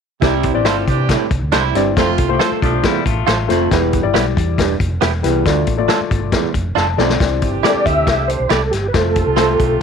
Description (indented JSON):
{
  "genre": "uptempo 1960s-style soul",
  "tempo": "138 BPM",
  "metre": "4/4",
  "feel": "straight",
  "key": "C major",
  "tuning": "A4 = 440 Hz",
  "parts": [
    { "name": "warm horn section", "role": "second line", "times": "0.2-3.0, 7.2-9.8 s", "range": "C3 to A4", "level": "-22 LUFS", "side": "right 15 dB", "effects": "none" },
    { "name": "dark grand piano", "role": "accompaniment", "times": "0.2-9.8 s", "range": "G3 to A5", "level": "-20 LUFS", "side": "left 11 dB", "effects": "none" },
    { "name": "growling baritone saxophone", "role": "riff", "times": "0.2-7.2 s", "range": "D2 to C3", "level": "-21 LUFS", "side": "right 15 dB", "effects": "none" },
    { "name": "hollow-body short-scale fingered electric bass", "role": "bass", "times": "0.2-9.8 s", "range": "E1 to C3", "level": "-20 LUFS", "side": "right 1 dB", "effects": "none" },
    { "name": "vintage drum kit", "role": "drums", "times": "0.2-9.7 s", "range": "hi-hat, kick drum, snare drum", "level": "-19 LUFS", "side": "left 3 dB", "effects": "none" },
    { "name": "direct-recorded clean electric guitar", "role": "stabs", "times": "0.7-9.5 s", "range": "B3 to D5", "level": "-19 LUFS", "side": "right 16 dB", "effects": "none" },
    { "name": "electric guitar through a small old amp", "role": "riff", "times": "2.6-3.7 s", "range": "F3 to F4", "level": "-22 LUFS", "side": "left 12 dB", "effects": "none" },
    { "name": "mellow tonewheel organ", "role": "melody", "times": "7.6-9.8 s", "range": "G4 to E5", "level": "-17 LUFS", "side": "right 1 dB", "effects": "chorus vibrato, slow rotary speaker" }
  ],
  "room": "studio reverb",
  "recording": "1960s-style stereo with parts hard left and right",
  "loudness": "-14 LUFS",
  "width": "side -6 dB against mid",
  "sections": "0.2-7.2 A section; 7.2-9.8 B section",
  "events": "grand piano fill 6.5-7.2; drum fill 6.8-7.2",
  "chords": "0.2 Cadd9; 2.0 F; 3.7 Em; 5.5 Dm; 7.2 Cadd9; 8.9 F"
}